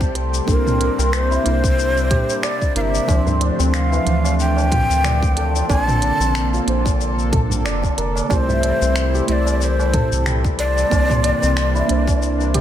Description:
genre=organic downtempo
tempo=92 BPM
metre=4/4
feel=swing 56% on 16ths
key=D minor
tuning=A4 = 440 Hz
part: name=breathy ney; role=melody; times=0.0-12.6 s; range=Bb4 to A5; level=-22 LUFS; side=left 2 dB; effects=ping-pong delay
part: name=muted felt-like synth keys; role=accompaniment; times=0.0-12.6 s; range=E3 to C5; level=-26 LUFS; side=right 5 dB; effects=chorus, sidechain pumping, digital delay
part: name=warm analog pad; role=sustained chords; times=0.0-12.6 s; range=C3 to A5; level=-27 LUFS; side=left 2 dB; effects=chorus, tremolo, sidechain pumping
part: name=santur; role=arpeggios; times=0.0-12.6 s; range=E3 to G5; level=-25 LUFS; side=equal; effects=digital delay
part: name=round analog bass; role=bass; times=0.0-12.6 s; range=F1 to D2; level=-20 LUFS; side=equal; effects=sidechain pumping
part: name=electronic kick drum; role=drums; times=0.0-12.2 s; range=none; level=-19 LUFS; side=equal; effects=studio reverb
part: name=organic electronic drum kit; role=drums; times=0.0-12.6 s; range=finger snaps, hi-hat, shaker, toms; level=-26 LUFS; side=equal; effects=studio reverb
part: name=tabla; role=percussion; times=3.1-12.2 s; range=none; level=-29 LUFS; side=right 4 dB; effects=none
room=light reverb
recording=none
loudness=-16 LUFS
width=side -11 dB against mid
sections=0.0-12.6 A section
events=kick drops out 12.2-12.6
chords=0.5 C9; 3.1 Dm9; 5.7 Bbmaj9; 8.3 Am7/C; 10.9 C9

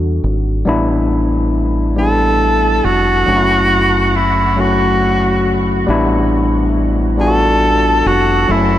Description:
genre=slow six-eight R&B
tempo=46 BPM (dotted quarters)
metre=6/8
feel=straight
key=unclear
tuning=A4 = 441 Hz
part: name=overdriven tine electric piano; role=accompaniment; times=0.0-8.8 s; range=F#3 to F#4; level=-16 LUFS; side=left 2 dB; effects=none
part: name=deep dub fingered electric bass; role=bass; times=0.0-8.8 s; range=E#1 to E2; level=-17 LUFS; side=equal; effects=none
part: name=breathy tenor saxophone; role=melody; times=2.0-8.8 s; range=E4 to A4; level=-14 LUFS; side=right 1 dB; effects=tape echo
room=moderate huge ambient reverb, RT60 7.9 s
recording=dreamy mix soaked in reverb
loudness=-11 LUFS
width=side -12 dB against mid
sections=0.7-8.8 A section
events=none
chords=0.0 Em9; 0.7 A7sus4; 3.3 F#m7; 5.9 A7sus4

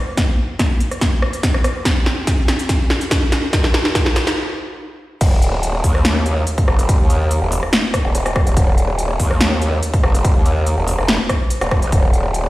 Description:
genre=heavy wobble dubstep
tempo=143 BPM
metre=4/4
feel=half-time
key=Eb minor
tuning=A4 = 440 Hz
part: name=big-room dance drum kit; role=drums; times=0.2-12.4 s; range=crash cymbal, hi-hat, rim click, snare drum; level=-19 LUFS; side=equal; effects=none
part: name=electronic kick drum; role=drums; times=0.2-12.0 s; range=none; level=-16 LUFS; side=equal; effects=none
part: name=growl bass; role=bass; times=5.2-12.5 s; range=Eb1 to Eb2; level=-17 LUFS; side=equal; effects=chorus, overdrive
room=moderate lush hall reverb, RT60 1.7 s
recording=played on a big sound system in a bare room, stone room reverb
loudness=-14 LUFS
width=side -17 dB against mid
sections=0.0-5.2 A section; 5.2-12.5 B section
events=build-up 0.0-5.2; drum fill 0.0-4.4; stop 4.4-5.2; drop 5.2-12.5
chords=none

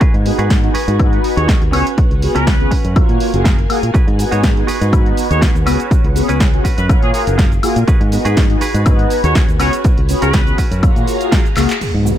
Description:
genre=filtered disco house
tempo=122 BPM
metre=4/4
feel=swing 54% on 16ths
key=G# dorian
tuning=A4 = 436 Hz
part: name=phased string machine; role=sustained chords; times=0.0-12.2 s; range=C#4 to B5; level=-25 LUFS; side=equal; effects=ensemble chorus, phaser, sidechain pumping, low-pass filter
part: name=clean electric guitar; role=riff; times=0.0-12.2 s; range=C#4 to C#5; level=-25 LUFS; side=right 4 dB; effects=sidechain pumping, low-pass filter
part: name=fingered electric bass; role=bass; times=0.0-12.1 s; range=F#1 to A#2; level=-17 LUFS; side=equal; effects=tube saturation, sidechain pumping, low-pass filter
part: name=electronic kick drum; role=drums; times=0.0-11.4 s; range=none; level=-14 LUFS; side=equal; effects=none
part: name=punchy analog drum machine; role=drums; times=0.0-12.2 s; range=crash cymbal, handclaps, hi-hat, shaker, snare drum, woodblock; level=-23 LUFS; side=left 1 dB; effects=sidechain pumping on hats, sidechain pumping on perc, sidechain pumping on cymbals
part: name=mellow synth brass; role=accompaniment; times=0.3-12.2 s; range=A#3 to C#5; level=-20 LUFS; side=left 1 dB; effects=chorus, phaser, sidechain pumping, low-pass filter
part: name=muted trumpet section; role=melody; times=1.4-10.6 s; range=G#4 to C#5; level=-23 LUFS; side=equal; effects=sidechain pumping, low-pass filter, ping-pong delay
part: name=impact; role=sound effects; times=11.8-12.2 s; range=none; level=-18 LUFS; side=equal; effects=none
room=digital ambience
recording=none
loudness=-11 LUFS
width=side -11 dB against mid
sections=0.0-11.8 A section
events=drum fill 11.6; band accent 11.7; impact 11.8-12.2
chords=0.0 G#m7; 1.7 C#7sus4; 3.0 F#maj9; 3.9 G#m7; 5.7 C#7sus4; 6.9 F#maj9; 7.9 G#m7; 9.6 C#7sus4; 10.8 F#maj9

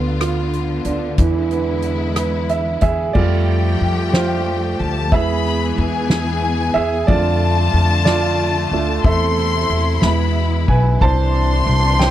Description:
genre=six-eight pop ballad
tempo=61 BPM (dotted quarters)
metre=6/8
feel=straight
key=unclear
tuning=A4 = 440 Hz
part: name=warm upright piano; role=accompaniment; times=0.0-12.1 s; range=D3 to A5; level=-20 LUFS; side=right 6 dB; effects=none
part: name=rich studio string section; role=sustained chords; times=0.0-12.1 s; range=B2 to G#4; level=-25 LUFS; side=left 3 dB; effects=none
part: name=upright bass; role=bass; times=0.0-12.1 s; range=B1 to F2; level=-19 LUFS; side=left 1 dB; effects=none
part: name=soft-mallet drum kit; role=drums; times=0.2-12.1 s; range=crash cymbal, hi-hat, kick drum, ride cymbal, rim click, snare drum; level=-20 LUFS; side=left 1 dB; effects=none
part: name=rich studio violin section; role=second line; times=3.2-12.1 s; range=G5 to C6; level=-23 LUFS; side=left 5 dB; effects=slapback echo
room=small room reverb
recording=dry, close 1970s-style studio recording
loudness=-15 LUFS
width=side -12 dB against mid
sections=0.0-3.2 A section; 3.2-12.1 B section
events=upright piano fill 2.2-3.2; upright piano solo 3.2-12.1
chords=0.0 Bdim/D; 1.2 E7; 3.2 Fadd9; 5.1 E; 7.1 Dm/F; 9.0 Am/E; 10.0 E; 11.0 Cadd9

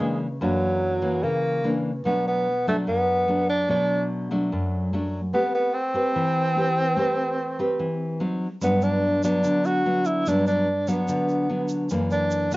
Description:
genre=bossa nova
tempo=146 BPM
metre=4/4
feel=straight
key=G major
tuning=A4 = 438 Hz
part: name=breathy tenor saxophone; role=melody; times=0.0-12.6 s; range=F#3 to F#4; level=-23 LUFS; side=right 1 dB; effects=cassette tape
part: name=nylon-string guitar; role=accompaniment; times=0.0-12.6 s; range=F#2 to B4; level=-24 LUFS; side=equal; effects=none
part: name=egg shaker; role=percussion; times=8.6-12.6 s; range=none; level=-43 LUFS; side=right 4 dB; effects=none
room=wet studio reverb, RT60 0.5 s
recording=home recording on cassette, nothing above 7.6 kHz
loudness=-21 LUFS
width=side -19 dB against mid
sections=0.0-12.6 A section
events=none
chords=0.0 F#7b13; 2.0 Bm7; 5.3 Am9; 8.2 Cdim/Gb; 8.6 Gmaj7; 11.9 F#7b13

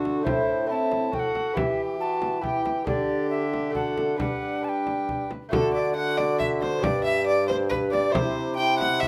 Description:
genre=classical, renaissance-style consort dance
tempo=138 BPM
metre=3/4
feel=straight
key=G major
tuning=A4 = 440 Hz
part: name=mellow tenor recorder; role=melody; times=0.0-9.1 s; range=A4 to A5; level=-33 LUFS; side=equal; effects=none
part: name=rich violin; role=second line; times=0.0-9.1 s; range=E4 to G5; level=-31 LUFS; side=equal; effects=none
part: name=clear trombone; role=accompaniment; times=0.0-9.1 s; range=C4 to A4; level=-32 LUFS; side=equal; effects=none
part: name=lute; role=accompaniment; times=0.0-9.1 s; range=G2 to B4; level=-34 LUFS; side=equal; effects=none
part: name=warm bassoon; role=bass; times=0.0-9.1 s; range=G2 to G3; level=-32 LUFS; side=equal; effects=none
part: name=frame drum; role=percussion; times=0.1-9.1 s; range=none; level=-34 LUFS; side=equal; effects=none
room=light reverb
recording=none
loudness=-25 LUFS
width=mono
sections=0.0-5.5 A section; 5.5-9.1 A section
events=none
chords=0.3 Am; 1.6 Em; 2.9 Dsus4; 3.7 D; 4.2 G; 5.5 D; 6.8 G; 8.1 C

